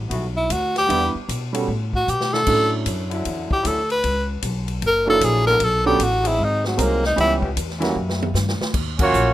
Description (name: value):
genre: jazz, big band swing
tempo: 153 BPM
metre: 4/4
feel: swing 64% on 8ths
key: B minor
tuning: A4 = 438 Hz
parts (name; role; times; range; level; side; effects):
- warm grand piano; accompaniment; 0.0-7.9 s; E3 to B4; -24 LUFS; right 4 dB; plate reverb
- upright bass; bass; 0.0-9.3 s; F#1 to B2; -24 LUFS; left 1 dB; none
- clear trombone section; sustained chords; 0.1-8.3 s; D3 to A4; -30 LUFS; left 2 dB; plate reverb
- swinging big-band drum kit; drums; 0.1-9.2 s; crash cymbal, hi-hat, kick drum, ride cymbal, snare drum, toms; -27 LUFS; left 1 dB; none
- breathy tenor saxophone; melody; 0.4-7.3 s; F#3 to B4; -19 LUFS; equal; plate reverb
- mellow trumpet section; melody; 9.0-9.3 s; Bb3 to Db5; -16 LUFS; right 2 dB; none
- brilliant trombone section; second line; 9.0-9.3 s; Gb3 to Db4; -26 LUFS; right 1 dB; none
room: light reverb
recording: rough home demo mix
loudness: -18 LUFS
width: side -14 dB against mid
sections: 0.0-8.7 A section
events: tenor saxophone solo 0.0-8.7; drum fill 2.1-2.5, 8.0-8.7; band accent 8.9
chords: 0.0 Gmaj13; 0.9 Em7; 1.7 A69; 2.5 Dmaj9; 4.0 Bsus2; 4.8 F#7alt; 5.6 Bm9; 6.4 G#7; 7.2 C#m7b5; 8.0 F#7b9; 8.7 Ebm9